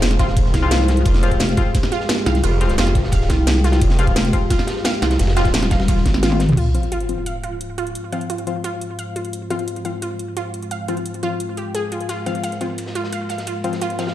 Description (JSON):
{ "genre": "dark technical drum and bass", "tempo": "174 BPM", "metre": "4/4", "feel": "straight", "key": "F minor", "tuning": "A4 = 439 Hz", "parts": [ { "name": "dark analog pad", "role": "sustained chords", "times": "0.0-14.1 s", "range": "Ab3 to C5", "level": "-27 LUFS", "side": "equal", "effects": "chorus, sidechain pumping" }, { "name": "phased detuned saw bass", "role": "bass", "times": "0.0-5.5 s", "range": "F1", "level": "-18 LUFS", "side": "equal", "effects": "phaser, overdrive, sidechain pumping" }, { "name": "crunchy breakbeat drum kit", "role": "drums", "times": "0.0-6.5, 12.1-14.1 s", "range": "ride cymbal, snare drum", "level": "-32 LUFS", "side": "equal", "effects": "high-pass filter on cymbals, high-pass filter on snare, high-pass filter on room" }, { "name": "drum and bass drum kit", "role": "drums", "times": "0.0-14.1 s", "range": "crash cymbal, hi-hat, ride cymbal, snare drum, toms", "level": "-24 LUFS", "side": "equal", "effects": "none" }, { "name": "wide unison pluck", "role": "arpeggios", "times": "0.2-14.1 s", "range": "F4 to F5", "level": "-26 LUFS", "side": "moving between left 3 dB and right 7 dB", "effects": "auto-pan, sidechain pumping, tape echo" }, { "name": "band-passed chord stab", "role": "stabs", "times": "0.2-14.1 s", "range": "F3 to F4", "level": "-27 LUFS", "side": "left 5 dB", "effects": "chorus, tape echo" }, { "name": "electronic kick drum", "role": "drums", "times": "0.2-6.1 s", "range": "none", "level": "-18 LUFS", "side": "equal", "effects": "none" }, { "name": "pulsing pluck wobble bass", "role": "bass", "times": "0.5-6.6 s", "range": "Eb1 to C2", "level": "-17 LUFS", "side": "equal", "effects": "chorus" }, { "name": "sub drop", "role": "sound effects", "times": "6.6-8.0 s", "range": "none", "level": "-23 LUFS", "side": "equal", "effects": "none" } ], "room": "light reverb, digital ambience", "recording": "played on a big sound system in a bare room, large studio reverb", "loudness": "-17 LUFS", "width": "side -13 dB against mid", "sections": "0.0-6.6 A section; 6.6-14.1 B section", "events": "drop 0.0-6.6; drum fill 6.2-6.6; impact 6.6-8.0", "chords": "0.0 Fm" }